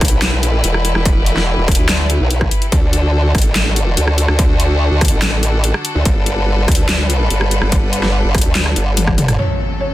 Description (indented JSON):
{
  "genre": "heavy wobble dubstep",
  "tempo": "144 BPM",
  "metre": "4/4",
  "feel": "half-time",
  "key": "unclear",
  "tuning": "A4 = 440 Hz",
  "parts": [
    { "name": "bright chamber string section", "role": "sustained chords", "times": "0.0-9.9 s", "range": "F#2 to B4", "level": "-22 LUFS", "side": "left 1 dB", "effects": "sidechain pumping" },
    { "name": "formant-sweep wobble bass", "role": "bass", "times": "0.0-9.4 s", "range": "E1 to D2", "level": "-15 LUFS", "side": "equal", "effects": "chorus, overdrive" },
    { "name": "dubstep drum kit", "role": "drums", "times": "0.0-9.7 s", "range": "crash cymbal, handclaps, hi-hat, rim click, snare drum, toms", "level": "-18 LUFS", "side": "left 1 dB", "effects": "low-pass filter on snare, low-pass filter on hats, low-pass filter on cymbals, low-pass filter on toms" },
    { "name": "electronic kick drum", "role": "drums", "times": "0.0-9.2 s", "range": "none", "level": "-16 LUFS", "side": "equal", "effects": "distortion" },
    { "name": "felt-muted upright piano", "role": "melody", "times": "9.4-9.9 s", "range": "C#5", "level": "-22 LUFS", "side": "left 2 dB", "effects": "none" },
    { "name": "impact", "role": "sound effects", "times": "9.4-9.9 s", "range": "none", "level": "-20 LUFS", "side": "equal", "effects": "none" }
  ],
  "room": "digital ambience",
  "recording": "dense, heavily limited modern master",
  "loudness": "-12 LUFS",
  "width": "side -15 dB against mid",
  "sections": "0.0-9.4 A section",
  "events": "drop 0.0-9.4; drum fill 9.0-9.4; impact 9.4-9.9",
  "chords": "0.0 Em; 2.7 D; 6.1 Gadd9; 9.4 F#m"
}